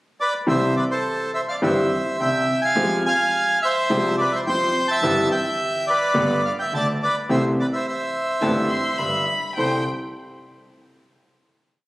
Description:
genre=tango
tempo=106 BPM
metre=4/4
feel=rubato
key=C major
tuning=A4 = 439 Hz
part: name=bandoneon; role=melody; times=0.2-9.8 s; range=A4 to A5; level=-21 LUFS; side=right 1 dB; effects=none
part: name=warm concert grand piano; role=accompaniment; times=0.5-9.8 s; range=G1 to A4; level=-23 LUFS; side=equal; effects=none
part: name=upright bass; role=bass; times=0.5-9.8 s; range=G1 to F2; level=-36 LUFS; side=right 1 dB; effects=none
part: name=warm violin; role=second line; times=8.4-9.8 s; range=G5 to C6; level=-26 LUFS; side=left 2 dB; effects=none
room=wet scoring stage reverb, RT60 2.2 s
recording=recorded on a phone in the room, club reverb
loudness=-19 LUFS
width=side -18 dB against mid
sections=0.0-0.5 pickup bar; 0.5-9.6 A section; 9.6-11.8 final chord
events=none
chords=0.5 C; 2.8 Fmadd9; 5.0 C/G; 6.2 G; 7.3 C6; 9.0 G; 9.6 C6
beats=| 0.48 1.05 1.62 2.19 | 2.76 3.33 3.89 4.46 | 5.02 5.59 6.15 6.72 | 7.29 7.85 8.42 8.99 | 9.56

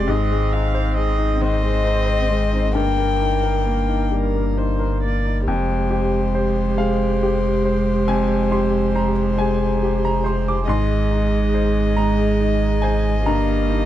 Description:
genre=neoclassical piano and strings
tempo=46 BPM (dotted quarters)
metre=6/8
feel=rubato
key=F minor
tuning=A4 = 441 Hz
part: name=rich violin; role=melody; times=0.0-13.9 s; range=C5 to G5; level=-25 LUFS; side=left 5 dB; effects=none
part: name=rich cello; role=second line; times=0.0-13.9 s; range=Ab3 to C4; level=-25 LUFS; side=right 4 dB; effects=none
part: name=bright upright piano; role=accompaniment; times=0.0-13.9 s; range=F2 to D6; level=-23 LUFS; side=left 3 dB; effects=none
part: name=warm viola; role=accompaniment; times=0.0-13.9 s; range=G4 to F5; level=-27 LUFS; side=right 4 dB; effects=none
part: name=pure sine sub bass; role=bass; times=0.0-13.9 s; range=F1 to Ab1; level=-22 LUFS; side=equal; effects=none
room=little or no reverb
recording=dark, warm production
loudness=-17 LUFS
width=side -12 dB against mid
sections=0.0-5.5 A section; 5.5-13.9 B section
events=none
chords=0.1 Ab; 2.8 Eb/G; 5.5 Fmadd9; 10.7 Ab; 13.3 Eb/G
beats=| 0.09 1.42 | 2.77 4.12 | 5.48 6.79 | 8.08 9.38 | 10.68 11.97 | 13.26

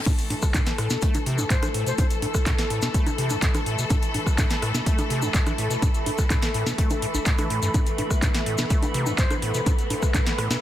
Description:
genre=acid house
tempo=125 BPM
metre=4/4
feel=straight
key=unclear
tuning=A4 = 440 Hz
part: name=rich studio string section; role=sustained chords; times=0.0-10.6 s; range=E3 to A4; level=-31 LUFS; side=left 2 dB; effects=sidechain pumping
part: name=warbly tape-like pad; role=texture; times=0.0-10.6 s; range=A4 to B5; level=-32 LUFS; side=equal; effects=chorus, built-in reverb, phaser, sidechain pumping
part: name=acid bass, square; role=riff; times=0.1-10.6 s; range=A1 to A3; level=-29 LUFS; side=equal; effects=overdrive, digital delay
part: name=booming analog drum machine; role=drums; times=0.1-10.6 s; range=congas, crash cymbal, handclaps, hi-hat, rim click, snare drum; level=-28 LUFS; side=equal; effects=none
part: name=electronic kick drum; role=drums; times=0.1-10.2 s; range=none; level=-23 LUFS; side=equal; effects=none
part: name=tube shaker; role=percussion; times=0.1-10.6 s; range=none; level=-35 LUFS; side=left 4 dB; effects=none
part: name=silver concert flute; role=melody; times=1.5-2.1, 9.2-9.3 s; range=C5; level=-35 LUFS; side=left 2 dB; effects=dub echo
room=light reverb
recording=dense, heavily limited modern master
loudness=-21 LUFS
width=side -12 dB against mid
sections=0.1-10.6 A section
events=drop 0.1-10.6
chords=0.1 A5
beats=| 0.06 0.54 1.02 1.50 | 1.98 2.46 2.94 3.42 | 3.90 4.38 4.86 5.34 | 5.82 6.30 6.78 7.26 | 7.74 8.22 8.70 9.18 | 9.66 10.14

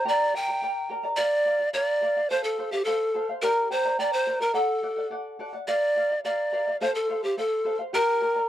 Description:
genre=andean folk, Andean ensemble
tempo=107 BPM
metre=2/4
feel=straight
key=G minor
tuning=A4 = 439 Hz
part: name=breathy bright pan flute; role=melody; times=0.0-8.5 s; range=G4 to G5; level=-24 LUFS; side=equal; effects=none
part: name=charango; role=accompaniment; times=0.0-8.5 s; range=G4 to Bb5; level=-28 LUFS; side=equal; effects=none
room=light reverb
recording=dry, close 1970s-style studio recording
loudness=-23 LUFS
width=side -12 dB against mid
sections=0.0-1.2 A section; 1.2-8.5 A section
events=none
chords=0.0 Gm; 1.2 Bb; 2.3 F; 3.4 Gm; 4.5 D; 5.7 Bb; 6.8 F; 7.9 Gm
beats=| 0.06 0.62 | 1.18 1.74 | 2.30 2.86 | 3.43 3.99 | 4.55 5.11 | 5.67 6.24 | 6.80 7.36 | 7.92 8.49

